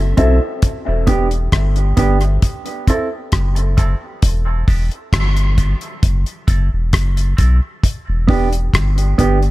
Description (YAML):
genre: dub reggae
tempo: 67 BPM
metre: 4/4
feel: straight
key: E minor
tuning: A4 = 440 Hz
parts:
  - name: soft dub sub bass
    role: bass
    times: 0.0-9.5 s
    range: E1 to B1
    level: -15 LUFS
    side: equal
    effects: none
  - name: mellow electric guitar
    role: accompaniment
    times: 0.2-9.4 s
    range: B3 to A4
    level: -21 LUFS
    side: right 3 dB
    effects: high-pass filter, dub echo
  - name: damped 70s drum kit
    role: drums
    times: 0.2-9.5 s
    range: hi-hat, kick drum, rim click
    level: -16 LUFS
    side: equal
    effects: none
room: studio reverb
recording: echo-heavy mix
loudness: -14 LUFS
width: side -18 dB against mid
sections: 0.0-9.5 A section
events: filter sweep on clean electric guitar 0.6-7.8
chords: 0.0 F#m7b5; 0.6 Em7; 2.4 F#m7b5; 4.2 Em7; 6.0 F#m7b5; 7.8 Em7